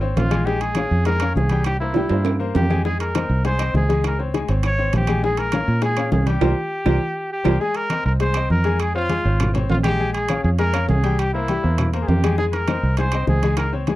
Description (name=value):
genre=latin, salsa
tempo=202 BPM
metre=4/4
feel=straight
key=F minor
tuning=A4 = 438 Hz
part: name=bright upright piano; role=accompaniment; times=0.0-14.0 s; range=G3 to Ab5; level=-26 LUFS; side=left 6 dB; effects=none
part: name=fingered electric bass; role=bass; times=0.0-14.0 s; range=Ab1 to Bb2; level=-20 LUFS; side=right 1 dB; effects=none
part: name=bongos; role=percussion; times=0.0-7.5, 12.4-14.0 s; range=none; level=-29 LUFS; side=left 5 dB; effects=none
part: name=congas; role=percussion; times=0.0-14.0 s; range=none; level=-26 LUFS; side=left 1 dB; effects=none
part: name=clear trumpet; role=melody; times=0.2-13.7 s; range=E4 to Db5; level=-24 LUFS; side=equal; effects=none
part: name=timbales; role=percussion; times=0.2-14.0 s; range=none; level=-27 LUFS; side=right 6 dB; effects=none
part: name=claves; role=percussion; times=0.3-13.7 s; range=none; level=-38 LUFS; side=right 18 dB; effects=none
room=little or no reverb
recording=dry, close 1970s-style studio recording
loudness=-18 LUFS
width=side -16 dB against mid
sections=0.0-7.6 A section; 7.6-14.0 A section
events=drum fill 2.0-2.9, 6.7-7.6; band accent 6.4-7.6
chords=0.5 Bbm9; 1.7 C7; 2.9 Fm7; 4.0 Db5; 5.2 Bbm7; 6.4 C5; 7.6 Fm7; 8.8 Dbmaj7; 10.0 Bbm9; 11.2 C7; 12.4 Fm7